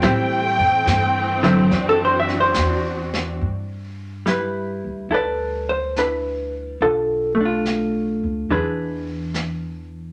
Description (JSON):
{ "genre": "jazz ballad", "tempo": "71 BPM", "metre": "4/4", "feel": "swing 68% on 8ths", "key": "G major", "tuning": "A4 = 440 Hz", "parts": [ { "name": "vintage hollow-body jazz guitar", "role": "accompaniment", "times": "0.0-10.1 s", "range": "D3 to E5", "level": "-22 LUFS", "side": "equal", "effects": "none" }, { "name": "warm symphonic string section", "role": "sustained chords", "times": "0.0-3.4 s", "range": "E3 to G5", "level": "-23 LUFS", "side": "equal", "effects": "none" }, { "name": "upright bass", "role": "bass", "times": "0.0-10.1 s", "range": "B1 to A2", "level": "-30 LUFS", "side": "equal", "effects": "none" }, { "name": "vintage brush drum kit", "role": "drums", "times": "0.0-10.1 s", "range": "brushed snare drum, hi-hat, kick drum, snare drum", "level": "-32 LUFS", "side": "equal", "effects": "none" } ], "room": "wet studio reverb, RT60 0.5 s", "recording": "none", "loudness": "-21 LUFS", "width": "mono", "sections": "0.0-3.4 A section; 3.4-10.1 B section", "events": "none", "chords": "0.0 Am7; 1.7 D9; 3.4 G69; 6.8 Bm7b5; 8.5 E7", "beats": "| 0.02 0.86 1.71 2.56 | 3.40 4.25 5.10 5.95 | 6.79 7.64 8.49 9.34" }